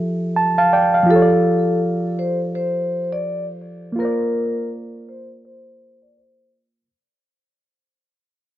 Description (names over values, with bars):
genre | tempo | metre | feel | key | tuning
hip hop | 83 BPM | 4/4 | swing 59% on 16ths | F major | A4 = 440 Hz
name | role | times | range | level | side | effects
reed electric piano | accompaniment | 0.0-6.9 s | F3 to A5 | -18 LUFS | right 1 dB | overdrive, low-pass filter
vibraphone with soft mallets | melody | 1.1-6.5 s | A4 to D5 | -22 LUFS | left 2 dB | low-pass filter
room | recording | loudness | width
wet studio ambience, RT60 0.5 s | cassette tape, low-pass filter, nothing above 8.0 kHz | -16 LUFS | side -13 dB against mid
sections
0.0-1.1 A section; 1.1-6.9 B section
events
reed electric piano fill 0.0-1.1; fade-out 1.1-6.9; filter sweep 1.1-6.9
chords
0.0 Fmaj9; 1.1 F69; 4.0 Bbadd9